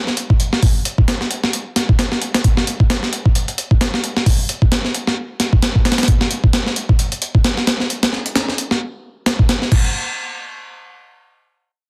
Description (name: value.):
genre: breakbeat.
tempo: 132 BPM.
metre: 4/4.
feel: swing 57% on 16ths.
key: none.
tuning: none.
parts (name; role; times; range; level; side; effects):
breakbeat sampler-style drum kit; drums; 0.1-9.8 s; crash cymbal, hi-hat, kick drum, snare drum; -17 LUFS; equal; overdrive.
room: light reverb.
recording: dense, heavily limited modern master.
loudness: -17 LUFS.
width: mono.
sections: 0.0-9.7 A section; 9.7-11.5 B section.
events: none.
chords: none.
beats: 0.17 | 0.63 1.08 1.53 1.99 | 2.44 2.90 3.35 3.81 | 4.26 4.72 5.17 5.63 | 6.08 6.54 6.99 7.44 | 7.90 8.35 8.81 9.26 | 9.72.